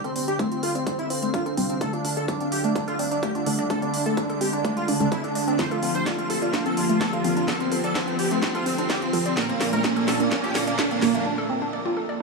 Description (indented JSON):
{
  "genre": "melodic techno",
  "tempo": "127 BPM",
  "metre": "4/4",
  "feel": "straight",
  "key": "D minor",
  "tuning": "A4 = 438 Hz",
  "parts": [
    { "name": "wide unison lead", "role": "melody", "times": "0.0-11.2 s", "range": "Bb3 to C5", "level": "-28 LUFS", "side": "right 1 dB", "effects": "analog chorus, sidechain pumping, dub echo" },
    { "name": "airy dreamy lead", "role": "second line", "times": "0.0-11.2 s", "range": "Bb4 to C6", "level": "-34 LUFS", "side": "right 1 dB", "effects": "chorus, sidechain pumping, dub echo" },
    { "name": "lush unison pad", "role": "sustained chords", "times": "0.0-11.2 s", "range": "Bb2 to F5", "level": "-30 LUFS", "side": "left 2 dB", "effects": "chorus, sidechain pumping" },
    { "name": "woody wave-folded pluck", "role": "arpeggios", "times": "0.0-12.1 s", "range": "A3 to F5", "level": "-29 LUFS", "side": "equal", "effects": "chorus, sidechain pumping, dub echo" },
    { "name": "filtered dub chord stab", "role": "stabs", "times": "0.0-11.2 s", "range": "Bb2 to F4", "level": "-30 LUFS", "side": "right 3 dB", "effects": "chorus, sidechain pumping, dub echo" },
    { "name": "analog drone", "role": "drone", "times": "0.0-11.3 s", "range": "D3", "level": "-34 LUFS", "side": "right 2 dB", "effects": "chorus, phaser, sidechain pumping" },
    { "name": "house drum kit", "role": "drums", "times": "0.0-11.2 s", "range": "hi-hat, snare drum", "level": "-30 LUFS", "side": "equal", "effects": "studio reverb" },
    { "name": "riser", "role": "sound effects", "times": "0.5-11.3 s", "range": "none", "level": "-32 LUFS", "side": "right 2 dB", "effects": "none" },
    { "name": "electronic kick drum", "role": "drums", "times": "0.4-10.9 s", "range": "none", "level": "-31 LUFS", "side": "equal", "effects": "high-pass filter on kick, studio reverb" }
  ],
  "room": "moderate huge ambient reverb, RT60 7.3 s",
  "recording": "small room ambience",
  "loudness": "-22 LUFS",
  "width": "side -2 dB against mid",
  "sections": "0.0-12.2 A section",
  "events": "build-up 0.0-12.2; filter sweep on synth pluck 0.0-12.2; filter sweep on synth stab 0.0-12.2; filter sweep on analog synth pad 0.0-12.2; riser 0.5-11.3; drum fill 5.6-11.3; break 11.3-12.2",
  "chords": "0.0 Csus4; 1.8 Dm; 5.6 F; 9.4 Bbadd9",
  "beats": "0.39 0.87 1.34 | 1.81 2.28 2.76 3.23 | 3.70 4.17 4.65 5.12 | 5.59 6.06 6.54 7.01 | 7.48 7.95 8.43 8.90 | 9.37 9.84 10.31 10.79 | 11.26 11.73"
}